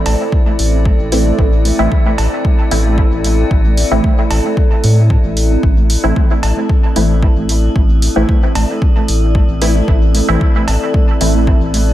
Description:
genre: dub techno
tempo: 113 BPM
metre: 4/4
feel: straight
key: A minor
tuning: A4 = 440 Hz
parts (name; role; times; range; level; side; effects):
- dark analog pad; sustained chords; 0.0-11.9 s; C4 to D5; -20 LUFS; equal; chorus, phaser, sidechain pumping
- metallic inharmonic drone; texture; 0.0-11.9 s; A3 to A4; -27 LUFS; left 1 dB; chorus, built-in reverb, sidechain pumping
- round analog bass; bass; 0.1-11.9 s; A1 to A2; -14 LUFS; equal; sidechain pumping
- electronic hi-hat; drums; 0.1-11.9 s; none; -23 LUFS; equal; overdrive
- cowbell and congas; percussion; 0.1-11.8 s; none; -24 LUFS; right 3 dB; overdrive, sidechain pumping on perc, dub echo
- electronic kick drum; drums; 0.3-11.6 s; none; -13 LUFS; equal; overdrive
- filtered dub chord stab; stabs; 1.1-11.9 s; E3 to E4; -19 LUFS; equal; chorus, phaser, sidechain pumping, dub echo
room: light reverb, digital ambience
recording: none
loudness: -10 LUFS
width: side -14 dB against mid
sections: 0.0-11.9 A section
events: none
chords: 0.0 Am

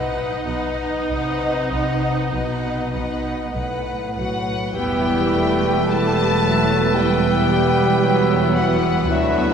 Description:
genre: classical, slow romantic movement for symphony orchestra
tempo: 46-58 BPM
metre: 4/4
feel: rubato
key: E minor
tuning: A4 = 440 Hz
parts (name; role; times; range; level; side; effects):
- rich studio violin section; melody; 0.0-9.5 s; D#5 to A5; -26 LUFS; left 2 dB; none
- rich studio violin section; second line; 0.0-9.5 s; B3 to F#5; -26 LUFS; left 2 dB; none
- clear studio viola section; accompaniment; 0.0-9.5 s; E3 to D#4; -24 LUFS; right 1 dB; none
- rich studio cello section; bass; 0.4-9.5 s; D2 to C3; -26 LUFS; equal; none
- rich studio double bass section; bass; 0.5-9.5 s; E1 to D2; -26 LUFS; right 3 dB; none
- mellow clarinet; second line; 4.2-9.5 s; E4 to A4; -26 LUFS; left 2 dB; none
- mellow French horn section; sustained chords; 4.2-9.5 s; E3 to A3; -25 LUFS; right 1 dB; none
- clear oboe; second line; 4.8-9.5 s; B4; -28 LUFS; equal; none
- mellow concert flute; second line; 4.8-9.5 s; E6 to F#6; -30 LUFS; equal; none
- dark bassoon; accompaniment; 4.8-9.5 s; B3; -25 LUFS; right 5 dB; none
room: wet cathedral reverb, RT60 4.0 s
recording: recorded in a church or concert hall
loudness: -17 LUFS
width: side -7 dB against mid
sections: 0.0-4.7 A section; 4.7-9.5 B section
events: none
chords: 0.0 B; 4.7 Em

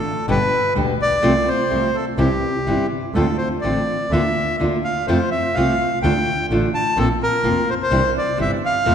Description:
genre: tango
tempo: 126 BPM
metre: 4/4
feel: rubato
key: F major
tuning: A4 = 442 Hz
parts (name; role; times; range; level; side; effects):
- bandoneon; melody; 0.0-8.9 s; G4 to A5; -20 LUFS; equal; none
- nylon-string guitar; accompaniment; 0.3-8.9 s; B2 to G4; -21 LUFS; equal; none
- clear double bass; bass; 0.3-8.9 s; F1 to F2; -24 LUFS; right 1 dB; none
room: wet concert hall reverb, RT60 2.3 s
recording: recorded in a church or concert hall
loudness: -17 LUFS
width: side -8 dB against mid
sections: 0.0-8.9 A section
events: none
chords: 0.3 G; 1.2 F/C; 2.2 C; 3.2 Dm7; 4.1 Bb/D; 5.1 F; 6.0 Dm; 7.0 Bbsus2; 7.9 Cadd9

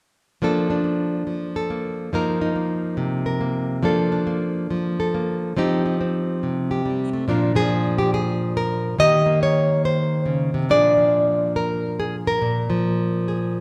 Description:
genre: solo jazz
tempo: 140 BPM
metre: 4/4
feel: swing 65% on 8ths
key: Bb major, Bb mixolydian from 7.3 s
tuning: A4 = 440 Hz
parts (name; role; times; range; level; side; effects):
- nylon-string guitar; solo; 0.4-13.6 s; Bb2 to Eb5; -22 LUFS; equal; none
room: wet recital hall reverb, RT60 1.7 s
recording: recorded in a church or concert hall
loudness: -22 LUFS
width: mono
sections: 0.4-7.3 A section; 7.3-13.6 B section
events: none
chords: 0.4 Bbmaj7/F; 2.1 F7sus4; 3.8 Bbmaj7/F; 5.6 F7sus2; 7.3 Bb7; 9.0 Eb7; 10.7 Bb7

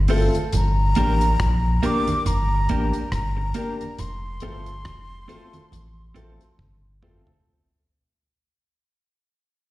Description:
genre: roots reggae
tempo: 69 BPM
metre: 4/4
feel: swing 56% on 16ths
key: unclear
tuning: A4 = 440 Hz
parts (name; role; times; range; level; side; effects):
- warm sub bass; bass; 0.0-7.2 s; F1 to Bb1; -22 LUFS; equal; none
- clean electric guitar; accompaniment; 0.1-7.2 s; Bb3 to C5; -30 LUFS; right 5 dB; spring reverb, tape echo
- warm upright piano; stabs; 0.1-7.3 s; A3 to Bb4; -27 LUFS; left 2 dB; slapback echo
- damped 70s drum kit; drums; 0.1-7.4 s; hi-hat, kick drum, rim click, toms; -31 LUFS; equal; none
- congas; percussion; 0.3-7.4 s; none; -29 LUFS; right 2 dB; none
- breathy jazz flute; melody; 0.6-6.6 s; Bb5 to D6; -28 LUFS; equal; tape echo, slapback echo
room: little or no reverb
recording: live gig heard through the venue's PA, recital hall reverb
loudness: -19 LUFS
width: side -17 dB against mid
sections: 0.0-7.5 A section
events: fade-out 0.0-7.5; drum fill 6.6-7.5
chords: 0.0 F; 0.5 Gm; 4.0 F

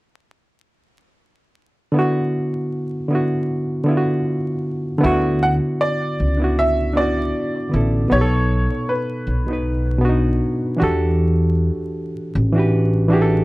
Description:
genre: lo-fi hip hop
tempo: 78 BPM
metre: 4/4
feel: swing 57% on 16ths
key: D major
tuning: A4 = 439 Hz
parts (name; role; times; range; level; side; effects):
- barky reed electric piano; accompaniment; 1.9-13.4 s; B2 to B4; -19 LUFS; equal; overdrive
- upright bass; bass; 5.0-13.4 s; A1 to E2; -19 LUFS; equal; none
- bright upright piano; melody; 5.4-10.0 s; B4 to F#5; -23 LUFS; equal; analog delay
room: light reverb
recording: vinyl crackle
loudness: -17 LUFS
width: side -20 dB against mid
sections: 2.0-5.0 A section; 5.0-13.4 B section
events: none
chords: 2.0 D69; 8.1 B7; 10.8 Em11

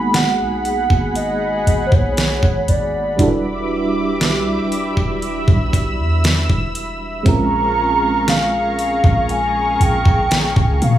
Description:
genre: contemporary R&B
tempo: 59 BPM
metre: 4/4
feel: straight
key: unclear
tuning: A4 = 440 Hz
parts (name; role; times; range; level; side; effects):
- hollow clarinet-like synth lead; melody; 0.0-11.0 s; B#4 to B5; -19 LUFS; right 1 dB; chorus, digital delay
- FM electric piano with tremolo; accompaniment; 0.0-11.0 s; G3 to B4; -23 LUFS; right 3 dB; none
- lush unison pad; sustained chords; 0.0-11.0 s; G3 to E6; -24 LUFS; left 1 dB; chorus
- clean 808-style bass; bass; 0.0-11.0 s; E1 to A#2; -20 LUFS; equal; none
- smooth R&B drum kit; drums; 0.1-11.0 s; hi-hat, kick drum, snare drum; -18 LUFS; equal; none
room: digital ambience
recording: studio reverb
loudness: -14 LUFS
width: side -12 dB against mid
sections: 0.0-11.0 A section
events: none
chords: 0.0 G#m7; 3.2 Em7; 7.3 A#m7

